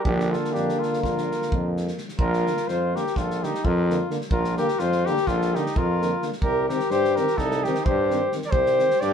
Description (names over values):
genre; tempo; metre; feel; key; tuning
balkan folk, Balkan brass band; 255 BPM (eighths); 9/8; straight; Bb major; A4 = 440 Hz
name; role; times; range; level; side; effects
mellow flugelhorn; melody; 0.0-9.1 s; G4 to D5; -26 LUFS; right 2 dB; none
clear flugelhorn; second line; 0.0-9.1 s; D4 to Bb4; -27 LUFS; left 6 dB; none
warm trombone; accompaniment; 0.0-8.9 s; D3 to Eb3; -33 LUFS; right 3 dB; none
mellow euphonium; accompaniment; 0.1-8.9 s; Bb3 to C4; -30 LUFS; left 2 dB; none
clear tuba; bass; 0.1-9.1 s; Bb1 to G2; -26 LUFS; equal; none
loose indie drum kit; percussion; 0.1-9.1 s; kick drum, snare drum; -30 LUFS; equal; none
room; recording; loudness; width
wet studio reverb, RT60 0.5 s; band playing live in one room; -21 LUFS; side -7 dB against mid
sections
0.0-2.2 A section; 2.2-9.1 B section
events
none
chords
0.1 Bb; 6.4 Cm